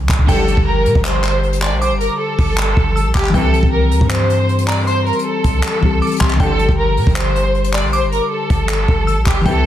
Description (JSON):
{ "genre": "hip hop, trap", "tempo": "157 BPM", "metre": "4/4", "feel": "half-time", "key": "G dorian", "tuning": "A4 = 441 Hz", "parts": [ { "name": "clean 808-style bass", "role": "bass", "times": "0.0-9.7 s", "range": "G1 to Bb2", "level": "-17 LUFS", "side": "equal", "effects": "none" }, { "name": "jazz brush drum kit", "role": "drums", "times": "0.1-9.5 s", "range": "crash cymbal, handclaps, hi-hat, kick drum", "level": "-18 LUFS", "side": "equal", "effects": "soft clipping on snare" }, { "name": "muted felt-like synth keys", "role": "accompaniment", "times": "0.2-9.7 s", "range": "D3 to G4", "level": "-22 LUFS", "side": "left 5 dB", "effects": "chorus, low-pass filter" }, { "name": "warm studio violin section", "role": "melody", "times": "0.3-9.7 s", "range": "G4 to D5", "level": "-19 LUFS", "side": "equal", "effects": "low-pass filter" }, { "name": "glassy synth bell", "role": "second line", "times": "0.3-9.7 s", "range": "G5 to E6", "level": "-26 LUFS", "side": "equal", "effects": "chorus, tremolo, digital delay" }, { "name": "clear brass ensemble", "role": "stabs", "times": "0.3-0.6, 3.3-3.6, 6.4-6.7, 9.5-9.7 s", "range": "A1 to E3", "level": "-26 LUFS", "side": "right 3 dB", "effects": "none" } ], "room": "small room ambience", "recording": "dense, heavily limited modern master", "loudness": "-13 LUFS", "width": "side -12 dB against mid", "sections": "0.3-9.7 A section", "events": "break 0.0", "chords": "0.3 Gsus2; 3.3 C; 6.4 Gsus2" }